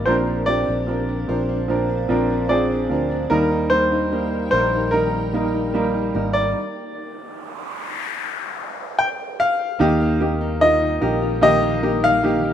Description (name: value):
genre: pop ballad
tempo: 74 BPM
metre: 4/4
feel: straight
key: Eb major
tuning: A4 = 440 Hz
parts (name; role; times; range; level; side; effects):
- bright baby grand piano; melody; 0.0-12.5 s; Bb4 to G5; -20 LUFS; left 1 dB; none
- clear upright piano; accompaniment; 0.0-12.5 s; Bb2 to C5; -21 LUFS; right 2 dB; none
- granular cloud pad; sustained chords; 0.0-12.5 s; Eb3 to G5; -33 LUFS; left 1 dB; built-in reverb
- fingerpicked plugged-in steel-string acoustic guitar; arpeggios; 0.0-12.5 s; Bb2 to Bb4; -28 LUFS; left 5 dB; tape echo
- fingered electric bass; bass; 0.0-12.5 s; Ab1 to Eb2; -26 LUFS; equal; none
- downlifter and noise sweep; sound effects; 0.0-9.8 s; none; -32 LUFS; left 2 dB; none
room: light reverb, studio reverb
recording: rough home demo mix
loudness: -18 LUFS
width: side -9 dB against mid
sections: 0.0-9.8 A section; 9.8-12.5 B section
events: stop 6.6-9.8; noise sweep 7.0-9.8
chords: 0.1 Bbadd9; 3.3 Eb; 6.6 N.C.; 9.8 Eb